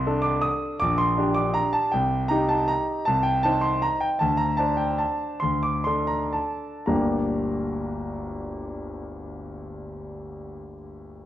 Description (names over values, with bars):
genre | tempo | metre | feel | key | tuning
classical, piano waltz | 110-169 BPM | 3/4 | rubato | G minor | A4 = 440 Hz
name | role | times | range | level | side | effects
clear concert grand piano | solo | 0.0-11.3 s | G1 to Eb6 | -23 LUFS | equal | none
room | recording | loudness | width
moderate recital hall reverb, RT60 1.3 s | worn, warbling old tape, cassette tape, warbly pitch drift | -22 LUFS | side -12 dB against mid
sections
0.0-6.9 A section; 6.9-10.0 B section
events
slowing down 3.6-6.9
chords
0.0 D5/C; 0.8 Gm/Bb; 1.9 Cm; 4.2 D5; 6.9 Gm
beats
0.06 0.44 | 0.81 1.18 1.56 | 1.94 2.32 2.71 | 3.08 3.44 3.83 | 4.21 4.60 5.00 | 5.43 5.87 6.36 | 6.88 7.41 7.96 | 8.49 9.01 9.54